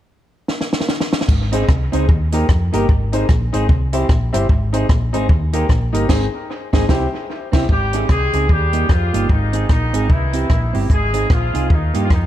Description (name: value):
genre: ska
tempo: 150 BPM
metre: 4/4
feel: swing 60% on 8ths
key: Ab major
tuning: A4 = 440 Hz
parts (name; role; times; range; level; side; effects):
- compact cocktail drum kit; drums; 0.5-12.2 s; crash cymbal, hi-hat, kick drum, rim click, snare drum; -17 LUFS; equal; dub echo
- hollow-body short-scale fingered electric bass; bass; 1.3-12.3 s; G1 to G2; -19 LUFS; equal; none
- clean electric guitar; accompaniment; 1.5-12.1 s; Bb3 to Ab4; -24 LUFS; right 6 dB; lush chorus
- bright upright piano; stabs; 1.5-7.6 s; Eb4 to C5; -25 LUFS; left 5 dB; dub echo
- mellow horn section; melody; 7.7-12.3 s; Eb3 to Ab4; -21 LUFS; left 1 dB; dub echo
room: light reverb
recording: dark, warm production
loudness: -14 LUFS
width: side -12 dB against mid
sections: 0.0-1.3 A section; 1.3-7.7 B section; 7.7-12.3 C section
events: drum fill 0.5-1.3; band accent 6.1-7.7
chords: 0.0 N.C.; 1.3 Ab; 2.1 Eb; 2.9 Ab; 3.7 C; 4.5 Ab; 5.3 Eb; 6.1 Ab; 6.9 C; 7.7 Ab; 8.5 Eb; 9.3 Ab; 10.1 C; 10.9 Ab; 11.7 Eb